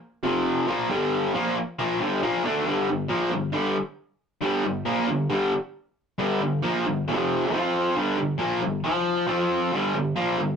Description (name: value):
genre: rock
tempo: 136 BPM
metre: 4/4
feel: straight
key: G minor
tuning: A4 = 440 Hz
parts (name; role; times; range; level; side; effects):
- cranked stack guitar; solo; 0.2-10.6 s; F2 to F4; -22 LUFS; equal; overdrive
room: moderate studio reverb, RT60 0.6 s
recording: rough rehearsal-room recording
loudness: -22 LUFS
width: side -6 dB against mid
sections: 0.0-2.7 A section; 2.7-10.6 B section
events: none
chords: 0.2 F5; 0.7 Gm; 7.1 F5; 8.0 Gm; 8.9 F5; 9.7 Gm